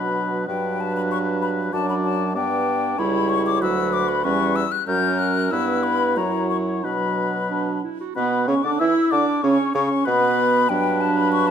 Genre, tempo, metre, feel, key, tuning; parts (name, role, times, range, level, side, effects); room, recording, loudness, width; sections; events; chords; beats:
quick classical-period movement for wind quintet; 95 BPM; 2/4; straight; B minor; A4 = 440 Hz
hollow concert flute; melody; 0.0-11.5 s; G5 to G6; -25 LUFS; left 9 dB
mellow oboe; second line; 0.0-11.5 s; A#4 to E5; -26 LUFS; left 4 dB
mellow French horn; accompaniment; 0.0-11.5 s; F#3 to E4; -26 LUFS; equal
mellow clarinet; accompaniment; 0.0-11.5 s; B3 to F#4; -25 LUFS; right 7 dB
clear bassoon; bass; 0.0-11.5 s; C#2 to E3; -26 LUFS; right 3 dB
wet recital hall reverb, RT60 1.4 s; -19 LUFS; side -8 dB against mid
0.0-8.2 A section; 8.2-11.5 B section
0.5 Gmaj7; 1.7 D/F#; 2.4 G; 3.0 C#m7b5; 3.6 Bm/D; 4.2 C#m7b5/E; 4.9 F#; 5.5 Em/G; 6.2 F#7; 6.8 Bm; 9.4 N.C.; 10.7 Gmaj7
| 0.48 1.11 | 1.73 2.36 | 2.98 3.61 | 4.24 4.87 | 5.52 6.17 | 6.83 7.50 | 8.16 8.80 | 9.43 10.06 | 10.70 11.32